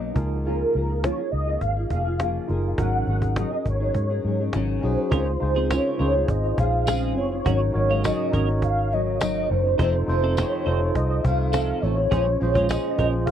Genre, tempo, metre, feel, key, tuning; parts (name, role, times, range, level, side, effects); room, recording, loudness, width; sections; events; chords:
indie pop, bedroom pop; 103 BPM; 4/4; straight; Db major from 5.1 s; A4 = 437 Hz
warm velvety synth lead; melody; 0.0-13.3 s; Bb4 to Gb5; -26 LUFS; equal; ensemble chorus, analog delay
nylon-string guitar; accompaniment; 0.0-13.3 s; F2 to Ab4; -30 LUFS; left 4 dB; lush chorus, warbly pitch drift
tine electric piano; accompaniment; 0.0-13.3 s; Cb4 to Db5; -30 LUFS; right 4 dB; fast stereo tremolo
vintage muted fingered electric bass; bass; 0.0-13.3 s; F1 to Ab2; -24 LUFS; equal
cajon; drums; 0.2-13.3 s; -26 LUFS; equal
twelve-string electric guitar; second line; 5.1-13.1 s; Ab3 to C5; -30 LUFS; right 8 dB; analog chorus, analog delay
tambourine; percussion; 5.7-12.8 s; -39 LUFS; left 8 dB
little or no reverb; cassette tape; -20 LUFS; side -9 dB against mid
0.0-5.1 A section; 5.1-13.3 B section
0.2 Db6; 2.8 Ab7sus4; 5.1 Dbmaj7; 7.5 Ab7sus4; 9.8 F7; 12.1 Bbm7